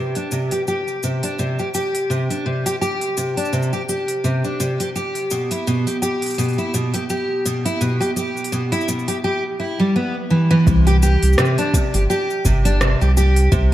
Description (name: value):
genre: folktronica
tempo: 84 BPM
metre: 4/4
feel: swing 56% on 16ths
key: C major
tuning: A4 = 438 Hz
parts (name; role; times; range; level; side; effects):
- picked steel-string acoustic guitar; arpeggios; 0.0-13.7 s; B2 to G4; -19 LUFS; equal; analog chorus, low-pass filter, diffuse ambient delay
- organic electronic drum kit; drums; 0.2-13.7 s; hi-hat, rim click, shaker; -26 LUFS; equal; overdrive
- warm sub bass; bass; 10.7-13.7 s; G1 to C2; -15 LUFS; equal; none
- electronic kick drum; drums; 10.7-13.7 s; none; -18 LUFS; equal; overdrive
room: moderate plate reverb, RT60 1.7 s, digital ambience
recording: dreamy mix soaked in reverb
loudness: -17 LUFS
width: side -13 dB against mid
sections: 0.0-10.7 A section; 10.7-13.7 B section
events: none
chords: 0.0 Csus2; 5.0 Em/B; 10.7 C5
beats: 0.67 1.39 | 2.10 2.81 3.53 4.24 | 4.96 5.67 6.39 7.10 | 7.82 8.53 9.24 9.96 | 10.67 11.39 12.10 12.81 | 13.53